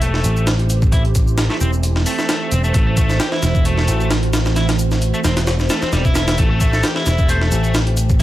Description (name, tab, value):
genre	breakbeat, breaks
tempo	132 BPM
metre	4/4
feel	swing 55% on 16ths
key	A dorian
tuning	A4 = 440 Hz
part	phased analog pad	sustained chords	0.0-8.2 s	E3 to C5	-24 LUFS	right 2 dB	phaser, chorus, sidechain pumping
part	biting overdriven guitar	riff	0.0-8.2 s	G3 to G4	-24 LUFS	equal	low-pass filter, tape echo
part	picked electric bass	bass	0.0-8.2 s	E1 to A1	-17 LUFS	equal	none
part	breakbeat sampler-style drum kit	drums	0.0-8.2 s	hi-hat, kick drum, snare drum	-18 LUFS	equal	studio reverb
part	shaker	drums	0.0-8.2 s	none	-31 LUFS	left 1 dB	overdrive, studio reverb
part	trumpet with metal mute	melody	6.7-7.4 s	A4 to C5	-27 LUFS	equal	old record sound, vintage 12-bit sampler grit, tape echo
room	little or no reverb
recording	none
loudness	-14 LUFS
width	side -14 dB against mid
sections	0.0-8.2 A section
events	none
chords	0.0 Am7